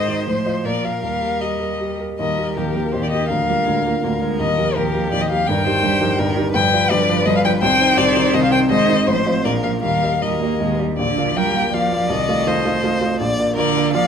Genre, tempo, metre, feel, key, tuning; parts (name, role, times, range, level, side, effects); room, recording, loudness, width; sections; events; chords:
quick classical-period movement for piano quartet; 154-170 BPM; 3/4; rubato; Eb major, Bb major from 11.0 s; A4 = 442 Hz
warm violin; melody; 0.0-14.1 s; Bb4 to G5; -20 LUFS; left 4 dB
warm cello; second line; 0.0-14.1 s; D3 to Bb3; -25 LUFS; right 11 dB
warm violin; second line; 0.0-14.1 s; G4 to D5; -25 LUFS; left 1 dB
warm baby grand piano; accompaniment; 0.0-14.1 s; G1 to F5; -20 LUFS; equal
moderate recital hall reverb, RT60 1.4 s; close, detailed microphones; -16 LUFS; side -7 dB against mid
0.0-2.2 A section; 2.2-11.0 A section; 11.0-14.1 B section
0.3 F7/A; 0.7 Bb; 1.0 Eb; 3.3 Bb/D; 4.4 Eb; 5.5 Eb/G; 6.6 G7; 7.6 Cm; 8.7 Ab; 9.1 F7/A; 9.4 Bb5; 9.8 Eb; 11.0 Bb; 12.1 F7/C; 13.2 Bb